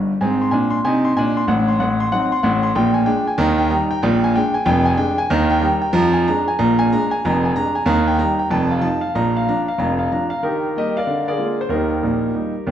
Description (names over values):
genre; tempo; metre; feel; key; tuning
jazz, stride piano; 188 BPM; 4/4; swing 64% on 8ths; Eb major; A4 = 438 Hz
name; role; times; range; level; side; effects
clear grand piano; solo; 0.0-12.7 s; F1 to C6; -16 LUFS; equal; none
room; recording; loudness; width
wet recital hall reverb, RT60 1.5 s; recorded in a church or concert hall; -16 LUFS; side -10 dB against mid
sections
0.2-10.4 A section; 10.4-12.7 B section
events
grand piano fill 0.0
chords
0.2 Abadd9; 1.5 Adim7; 2.7 Bb6; 3.4 Eb; 4.0 Bb6; 5.3 Eb; 5.9 Bb7/F; 7.9 Eb; 8.5 F7; 9.1 Bb; 10.4 Eb; 11.1 Bb7/D; 11.7 Eb